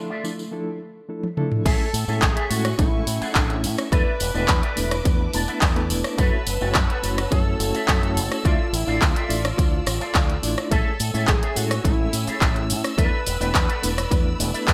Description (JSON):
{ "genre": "nu-disco, nu disco", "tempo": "106 BPM", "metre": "4/4", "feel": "straight", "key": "A major", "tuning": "A4 = 440 Hz", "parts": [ { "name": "unison lead", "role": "melody", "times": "0.0-14.6 s", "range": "A3 to B4", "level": "-32 LUFS", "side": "equal", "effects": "lush chorus, digital delay" }, { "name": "reed electric piano", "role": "accompaniment", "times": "0.0-14.7 s", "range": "F3 to D5", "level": "-32 LUFS", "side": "equal", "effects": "fast tremolo, sidechain pumping, delay" }, { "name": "clear studio string section", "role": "sustained chords", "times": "0.0-14.7 s", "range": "D3 to E6", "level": "-39 LUFS", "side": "equal", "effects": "sidechain pumping" }, { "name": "electric guitar with an envelope filter", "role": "riff", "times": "0.1-14.7 s", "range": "F4 to A5", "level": "-33 LUFS", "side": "equal", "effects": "analog chorus" }, { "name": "tambourine", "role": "percussion", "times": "0.2-14.7 s", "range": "none", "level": "-37 LUFS", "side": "equal", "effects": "none" }, { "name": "house drum kit", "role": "drums", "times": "1.2-14.7 s", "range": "crash cymbal, handclaps, hi-hat, rim click, shaker, toms", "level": "-28 LUFS", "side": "equal", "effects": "overdrive, gated reverb" }, { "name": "fingered electric bass with an envelope filter", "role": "bass", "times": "1.7-14.7 s", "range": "E1 to A2", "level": "-28 LUFS", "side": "equal", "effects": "none" }, { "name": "electronic kick drum", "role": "drums", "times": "1.7-14.7 s", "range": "none", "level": "-24 LUFS", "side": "equal", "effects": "overdrive" } ], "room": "light reverb, digital ambience", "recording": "bright 1980s-style digital production", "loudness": "-22 LUFS", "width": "mono", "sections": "0.0-1.7 A section; 1.7-14.7 B section", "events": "drum fill 1.2-1.7; drop 1.7-14.7; clean electric guitar fill 5.1-6.2", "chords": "0.0 Dmadd9; 1.7 Amaj7; 3.9 E7sus4; 6.2 F#m7; 8.5 Dmadd9; 10.7 Amaj7; 13.0 E7sus4" }